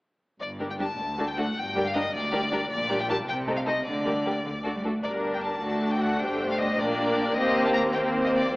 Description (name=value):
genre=quick classical-period movement for symphony orchestra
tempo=103 BPM (dotted quarters)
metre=6/8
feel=rubato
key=G minor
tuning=A4 = 439 Hz
part: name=clear chamber violin section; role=melody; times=0.4-8.6 s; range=D5 to Bb5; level=-29 LUFS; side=left 1 dB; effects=none
part: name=rich chamber cello section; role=bass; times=0.4-8.6 s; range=D2 to A3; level=-34 LUFS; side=equal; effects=none
part: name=rich chamber double bass section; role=bass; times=0.4-8.6 s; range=G1 to Eb2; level=-36 LUFS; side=right 1 dB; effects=none
part: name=rich chamber violin section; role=second line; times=0.6-8.6 s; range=Eb4 to C5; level=-30 LUFS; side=left 1 dB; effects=none
part: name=rich symphonic viola section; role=accompaniment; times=0.6-8.5 s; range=G3 to D4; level=-28 LUFS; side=equal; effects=none
room=moderate concert hall reverb, RT60 2.3 s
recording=AM radio sound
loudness=-24 LUFS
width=side -21 dB against mid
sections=0.4-8.6 A section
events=none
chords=0.4 Gm; 1.0 D; 1.6 Gm; 2.7 Gm/Bb; 3.3 Adim/C; 3.9 Gm/D; 4.5 D; 5.0 Gm; 5.6 D; 6.2 Gm; 7.4 Cm7/Eb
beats=| 0.41 0.99 | 1.56 2.13 | 2.70 3.28 | 3.86 4.45 | 5.05 5.63 | 6.21 6.79 | 7.37 7.95 | 8.54